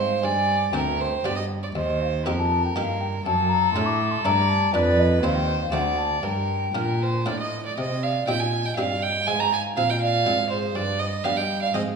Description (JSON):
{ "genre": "classical, baroque-style sonata movement with continuo", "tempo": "120 BPM", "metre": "3/4", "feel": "straight", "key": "G minor, C minor from 7.8 s", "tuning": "A4 = 438 Hz", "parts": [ { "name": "mellow hollow baroque flute", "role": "melody", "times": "0.0-11.8 s", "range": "Ab4 to D6", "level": "-26 LUFS", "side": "left 3 dB", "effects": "none" }, { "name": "warm violin", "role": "second line", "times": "0.0-11.8 s", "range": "A4 to Bb5", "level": "-26 LUFS", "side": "right 5 dB", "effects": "none" }, { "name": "buff-stop harpsichord", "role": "accompaniment", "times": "0.0-12.0 s", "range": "D2 to C5", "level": "-31 LUFS", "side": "left 1 dB", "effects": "none" }, { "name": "dark cello", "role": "bass", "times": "0.0-12.0 s", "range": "D2 to G3", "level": "-26 LUFS", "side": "right 1 dB", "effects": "none" } ], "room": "wet recital hall reverb, RT60 1.6 s", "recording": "studio reverb", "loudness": "-21 LUFS", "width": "side -5 dB against mid", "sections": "0.0-7.8 A section; 7.8-12.0 A section", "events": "none", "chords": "0.2 Gsus4; 1.2 G; 1.8 Eb; 3.3 D/F#; 4.7 Bdim/F; 5.2 Cm/Eb; 5.7 D7; 6.2 Gm; 7.8 Cm; 9.3 Fm/Ab; 10.8 G" }